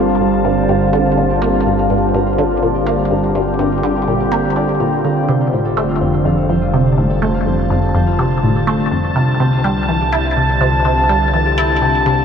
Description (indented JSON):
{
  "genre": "ambient, sequencer-driven space music",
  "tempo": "124 BPM",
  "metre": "4/4",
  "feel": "straight",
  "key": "G minor",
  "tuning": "A4 = 440 Hz",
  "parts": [
    { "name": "evolving wavetable pad", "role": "sustained chords", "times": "0.0-12.2 s", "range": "D3 to A5", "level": "-16 LUFS", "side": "equal", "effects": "phaser, built-in reverb" },
    { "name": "Celtic harp", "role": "arpeggios", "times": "0.0-12.2 s", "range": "F4 to D5", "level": "-29 LUFS", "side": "left 5 dB", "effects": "auto-pan, ping-pong delay" },
    { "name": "resonant blip pluck", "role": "riff", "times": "0.0-12.2 s", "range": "F2 to E4", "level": "-17 LUFS", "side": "equal", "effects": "phaser, lush chorus, ping-pong delay" },
    { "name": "round analog bass", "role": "bass", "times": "0.0-12.2 s", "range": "F1 to C2", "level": "-23 LUFS", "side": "equal", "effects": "tube saturation" }
  ],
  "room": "wet cathedral reverb, RT60 6.4 s",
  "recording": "in a vast, echoing space",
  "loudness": "-13 LUFS",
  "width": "side -7 dB against mid",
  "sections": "0.0-12.2 A section",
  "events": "fade-in on harp 0.0-12.2",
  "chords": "0.0 Gm7; 5.3 F; 9.2 Csus4"
}